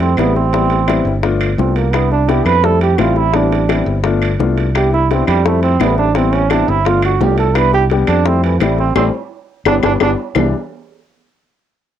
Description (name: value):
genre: Afro-Cuban jazz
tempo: 171 BPM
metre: 4/4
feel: straight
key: C major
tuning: A4 = 440 Hz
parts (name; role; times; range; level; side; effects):
- bright trombone; second line; 0.0-10.1 s; E3 to B4; -16 LUFS; right 7 dB; cassette tape
- dark grand piano; accompaniment; 0.0-10.5 s; E3 to G4; -18 LUFS; left 7 dB; cassette tape
- modern bright fingered electric bass; bass; 0.0-10.5 s; G1 to F2; -16 LUFS; equal; none
- timbales; percussion; 0.0-10.4 s; none; -26 LUFS; right 12 dB; none
- bongos; percussion; 0.2-10.4 s; none; -20 LUFS; left 10 dB; none
- claves; percussion; 0.2-10.4 s; none; -26 LUFS; left 11 dB; none
room: light reverb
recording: home recording on cassette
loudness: -12 LUFS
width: side -10 dB against mid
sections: 0.0-10.4 A section; 10.4-11.8 B section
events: trombone solo 0.0-10.4; band accent 9.0-10.4; drum fill 9.3-10.4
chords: 0.0 Fmaj7; 0.5 Am7; 1.2 G7; 1.9 Cmaj7; 2.6 Fmaj7; 3.3 Am7; 4.0 G7; 4.7 Cmaj7; 5.5 Fmaj7; 6.2 Am7; 6.9 G7; 7.6 Cmaj7; 8.3 Fmaj7; 9.0 Am7; 9.7 G; 10.4 Cmaj7